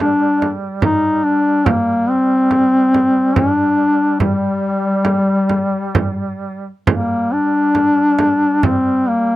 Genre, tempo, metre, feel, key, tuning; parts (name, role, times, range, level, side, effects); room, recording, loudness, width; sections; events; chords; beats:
caucasian folk, Caucasian lament; 64-73 BPM; 3/4; rubato; G minor; A4 = 439 Hz
mellow duduk; melody; 0.0-9.4 s; G3 to Eb4; -14 LUFS; left 1 dB
warm duduk; drone; 0.0-9.4 s; G3; -25 LUFS; right 4 dB
frame drum; percussion; 0.0-8.8 s; -19 LUFS; right 3 dB
little or no reverb; dry, close 1970s-style studio recording; -13 LUFS; side -16 dB against mid
0.0-6.9 A section; 6.9-9.4 B section
0.82 | 1.65 2.50 3.35 | 4.19 5.05 5.95 | 6.87 7.75 8.63